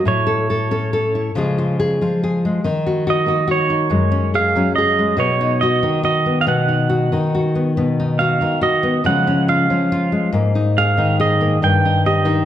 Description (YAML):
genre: acoustic folk duo or small band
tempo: 47 BPM (dotted quarters)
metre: 6/8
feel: straight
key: Db mixolydian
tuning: A4 = 440 Hz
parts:
  - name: pedal steel guitar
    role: second line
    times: 0.0-12.4 s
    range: C#5 to G5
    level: -19 LUFS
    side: right 6 dB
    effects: none
  - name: nylon-string guitar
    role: accompaniment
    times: 0.1-12.4 s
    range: Gb2 to A4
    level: -16 LUFS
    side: left 2 dB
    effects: none
room: wet recital hall reverb, RT60 1.5 s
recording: dark, warm production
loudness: -15 LUFS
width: side -11 dB against mid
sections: 0.0-12.4 A section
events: pedal steel guitar solo 0.0-12.4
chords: 0.1 A; 1.3 Db; 2.6 Ebm; 3.9 Gbsus2; 5.2 Cb; 9.1 Db; 10.3 Absus2; 11.6 Eb/G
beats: | 0.06 1.35 | 2.63 3.92 | 5.20 6.48 | 7.77 9.05 | 10.33 11.62